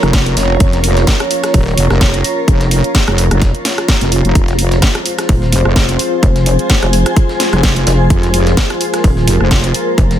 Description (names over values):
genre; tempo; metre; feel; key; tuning
bass house; 128 BPM; 4/4; swing 55% on 16ths; F minor; A4 = 442 Hz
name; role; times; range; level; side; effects
dark analog pad; sustained chords; 0.0-10.2 s; F4 to Db5; -20 LUFS; equal; chorus, sidechain pumping
wobble bass; bass; 0.0-9.7 s; Eb1 to F1; -13 LUFS; equal; chorus, tube saturation, sidechain pumping
breakbeat sampler-style drum kit; drums; 0.0-10.2 s; hi-hat, snare drum; -28 LUFS; left 1 dB; none
garage drum kit; drums; 0.0-10.2 s; hi-hat, rim click, snare drum; -17 LUFS; equal; studio reverb
granular cloud pad; texture; 0.0-10.2 s; F4 to Bb5; -20 LUFS; equal; built-in reverb, sidechain pumping
electronic kick drum; drums; 0.1-10.1 s; none; -12 LUFS; equal; studio reverb
pulsing pluck wobble bass; bass; 5.3-10.2 s; Eb1 to F1; -13 LUFS; equal; chorus, overdrive, sidechain pumping
room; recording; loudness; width
little or no reverb; none; -10 LUFS; side -11 dB against mid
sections
0.0-10.2 A section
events
none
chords
0.0 Bbm; 4.4 Fm